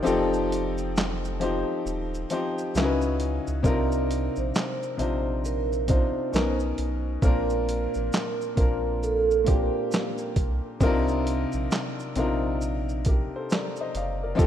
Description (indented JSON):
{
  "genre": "lo-fi hip hop",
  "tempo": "67 BPM",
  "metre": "4/4",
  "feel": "swing 62% on 16ths",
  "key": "C dorian",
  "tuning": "A4 = 440 Hz",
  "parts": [
    { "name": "clear upright piano", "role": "accompaniment", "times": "0.0-14.5 s", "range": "Bb2 to F5", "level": "-27 LUFS", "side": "left 3 dB", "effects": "none" },
    { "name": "soft dub sub bass", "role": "bass", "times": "0.1-14.5 s", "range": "Eb1 to Db2", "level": "-30 LUFS", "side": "right 1 dB", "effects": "none" },
    { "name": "boom bap sampler-style drum kit", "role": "drums", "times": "0.1-14.5 s", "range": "handclaps, hi-hat, kick drum, shaker, snare drum", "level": "-26 LUFS", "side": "right 1 dB", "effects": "none" },
    { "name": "vibraphone with soft mallets", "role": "melody", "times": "3.7-9.9 s", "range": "A4 to C5", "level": "-29 LUFS", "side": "right 6 dB", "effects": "tape echo" }
  ],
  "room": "light reverb, digital ambience",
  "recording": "rough home demo mix",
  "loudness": "-23 LUFS",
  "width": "side -10 dB against mid",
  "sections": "0.0-3.6 A section; 3.6-14.5 B section",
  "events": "break 0.1-3.6",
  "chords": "0.1 F9; 2.7 Dbm11; 3.6 Cm11; 6.3 Bmaj7; 7.2 Bb; 10.8 Cm11"
}